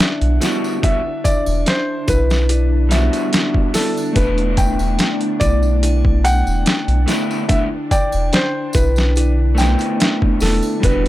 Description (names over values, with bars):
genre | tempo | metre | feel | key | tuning
trip hop | 72 BPM | 4/4 | straight | unclear | A4 = 441 Hz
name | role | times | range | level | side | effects
felt-muted upright piano | melody | 0.0-11.1 s | A4 to F#5 | -23 LUFS | equal | tape echo
electric guitar at the edge of break-up | accompaniment | 0.0-11.1 s | G3 to F#4 | -22 LUFS | right 1 dB | harmonic tremolo, tape echo
string machine, cellos | sustained chords | 0.0-11.1 s | D4 | -27 LUFS | left 1 dB | ensemble chorus
music box | arpeggios | 0.0-11.1 s | D4 to G5 | -24 LUFS | left 2 dB | vintage 12-bit sampler grit, tape echo
boom bap sampler-style drum kit | drums | 0.0-11.1 s | hi-hat, kick drum, snare drum | -18 LUFS | equal | overdrive
tambourine and triangle | percussion | 0.0-11.0 s | none | -34 LUFS | equal | none
round analog bass | bass | 0.2-11.1 s | E1 to B1 | -16 LUFS | equal | tube saturation
room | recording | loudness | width
small room ambience | dry, gritty hardware recording | -14 LUFS | side -15 dB against mid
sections
0.0-11.1 A section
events
none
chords
0.0 Em9; 4.2 G6/E (rootless)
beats
0.00 | 0.83 1.67 2.50 3.33 | 4.17 5.00 5.83 6.67 | 7.50 8.33 9.16 10.00 | 10.83